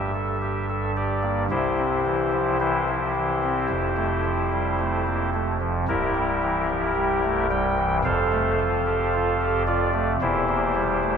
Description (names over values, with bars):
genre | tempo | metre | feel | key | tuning
classical, chorale-style piece for pipe organ | 55 BPM | 4/4 | rubato | F major | A4 = 441 Hz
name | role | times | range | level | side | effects
chamber organ, soft reed | solo | 0.0-11.2 s | C1 to G5 | -21 LUFS | equal | none
room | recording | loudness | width
wet cathedral reverb, RT60 4.0 s | minimal, uncompressed stereo recording | -21 LUFS | side -7 dB against mid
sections
0.0-11.2 A section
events
none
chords
0.0 Gm; 1.5 C; 3.7 F; 5.9 C7; 8.1 F; 10.2 C7/E